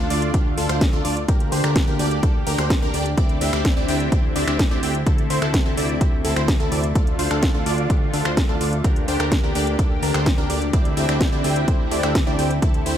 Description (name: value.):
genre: EDM, festival progressive house.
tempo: 127 BPM.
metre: 4/4.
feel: straight.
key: unclear.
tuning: A4 = 439 Hz.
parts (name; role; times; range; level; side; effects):
lush unison pad; sustained chords; 0.0-13.0 s; C3 to G4; -28 LUFS; left 1 dB; chorus, sidechain pumping.
supersaw stab; riff; 0.0-13.0 s; C4 to G5; -24 LUFS; equal; sidechain pumping, dub echo.
fat analog bass; bass; 0.0-13.0 s; D2; -25 LUFS; equal; sidechain pumping.
house drum kit; drums; 0.1-13.0 s; finger snaps, hi-hat, snare drum; -26 LUFS; equal; overdrive.
electronic kick drum; drums; 0.3-12.7 s; none; -20 LUFS; equal; none.
room: little or no reverb.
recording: none.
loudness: -18 LUFS.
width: side -10 dB against mid.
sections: 0.0-13.0 A section.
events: none.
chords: 0.0 Dm; 1.3 Gm/D; 3.2 Cadd9/D; 5.1 Am/D; 7.0 Dm; 8.8 Gm/D; 10.7 Cadd9/D.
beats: 0.34 0.81 | 1.28 1.76 2.23 2.70 | 3.17 3.65 4.12 4.59 | 5.07 5.54 6.01 6.48 | 6.96 7.43 7.90 8.37 | 8.84 9.32 9.79 10.26 | 10.73 11.21 11.68 12.15 | 12.62.